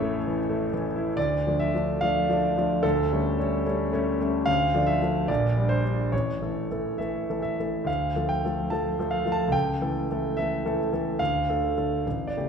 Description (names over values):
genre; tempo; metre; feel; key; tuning
classical, romantic character piece for solo piano; 64-74 BPM; 2/4; rubato; D minor; A4 = 441 Hz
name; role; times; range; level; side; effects
clear grand piano; solo; 0.0-12.5 s; A1 to A5; -23 LUFS; equal; none
room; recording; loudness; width
wet recital hall reverb, RT60 1.4 s; recorded in a church or concert hall; -23 LUFS; side -6 dB against mid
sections
0.0-1.2 A section; 1.2-12.5 B section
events
none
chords
0.0 A; 1.2 Dm; 2.8 A7/D; 4.5 Dm; 5.3 Gm/Bb; 6.1 A; 7.9 Dm; 9.5 A7/C#; 11.2 Dm